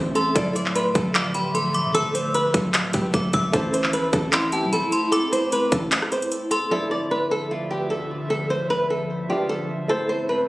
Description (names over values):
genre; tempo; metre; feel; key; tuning
hip hop, trap; 151 BPM; 4/4; half-time; D dorian; A4 = 436 Hz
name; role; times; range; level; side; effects
flamenco guitar; melody; 0.0-10.4 s; E4 to D5; -24 LUFS; equal; tape echo
warm concert grand piano; accompaniment; 0.0-10.5 s; F3 to D5; -32 LUFS; equal; none
airy breathy pad; sustained chords; 0.0-10.5 s; D2 to E5; -29 LUFS; equal; chorus, phaser
growling 808-style bass; bass; 0.0-5.9 s; D1 to C2; -26 LUFS; equal; none
metallic FM bell; second line; 0.2-6.7 s; A5 to E6; -27 LUFS; equal; chorus, tape echo
trap drum kit; drums; 0.2-6.6 s; handclaps, hi-hat, kick drum, rim click; -24 LUFS; equal; overdrive
room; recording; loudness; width
light reverb; recorded on a phone in the room, studio reverb, compression; -20 LUFS; side -19 dB against mid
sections
0.0-6.7 A section; 6.7-10.5 B section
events
break 5.9-6.7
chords
0.4 Dmadd9; 3.5 Am; 6.7 Dmadd9; 9.9 Am